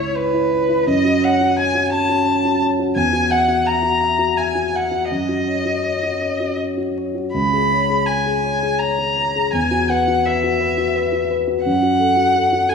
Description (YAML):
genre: classical, impressionist duo for violin and grand piano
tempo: 79-88 BPM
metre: 3/4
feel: rubato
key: unclear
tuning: A4 = 440 Hz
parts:
  - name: rich violin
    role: melody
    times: 0.0-12.7 s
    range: B4 to B5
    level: -18 LUFS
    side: left 1 dB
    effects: none
  - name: dark grand piano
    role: accompaniment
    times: 0.0-12.7 s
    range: C#2 to E5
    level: -19 LUFS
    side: left 1 dB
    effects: none
room: moderate concert hall reverb, RT60 2.0 s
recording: vinyl crackle, studio ambience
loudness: -16 LUFS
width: side -6 dB against mid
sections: 0.0-12.7 A section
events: none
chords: 0.0 C#m7; 0.9 F#m; 3.0 Esus2; 5.1 F#5; 7.3 C#5; 9.5 Esus2; 11.7 F#m